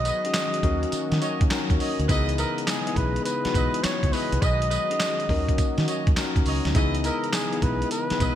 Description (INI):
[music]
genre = R&B, new jack swing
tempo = 103 BPM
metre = 4/4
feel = swing 66% on 16ths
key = C# dorian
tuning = A4 = 440 Hz
[part]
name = trumpet with bucket mute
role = melody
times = 0.0-8.4 s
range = G#4 to D#5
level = -29 LUFS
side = equal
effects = ping-pong delay
[part]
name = brassy analog pad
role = sustained chords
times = 0.0-8.4 s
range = C#3 to D#5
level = -34 LUFS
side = right 1 dB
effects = chorus
[part]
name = warm horn section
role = stabs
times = 0.0-8.4 s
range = E4 to D#5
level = -33 LUFS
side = right 2 dB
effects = none
[part]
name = deep dub fingered electric bass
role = bass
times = 0.0-8.3 s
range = B1 to D#3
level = -26 LUFS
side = right 1 dB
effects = none
[part]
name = dusty soul sampler-style drum kit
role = drums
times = 0.1-8.4 s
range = handclaps, hi-hat, kick drum, snare drum, tambourine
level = -26 LUFS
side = right 1 dB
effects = gated reverb
[part]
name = bell-like tine electric piano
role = accompaniment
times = 0.2-8.4 s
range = B3 to A#4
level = -29 LUFS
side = left 6 dB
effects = lush chorus
[sound]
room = light reverb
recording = bright 1980s-style digital production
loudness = -22 LUFS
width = side -11 dB against mid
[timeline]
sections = 0.0-8.4 A section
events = none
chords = 0.0 B6; 0.6 D#m7; 2.1 C#m9; 4.4 B6; 5.3 D#m7; 6.8 C#m9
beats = 0.34 0.93 1.51 | 2.09 2.67 3.25 3.84 | 4.42 5.00 5.58 6.17 | 6.75 7.33 7.92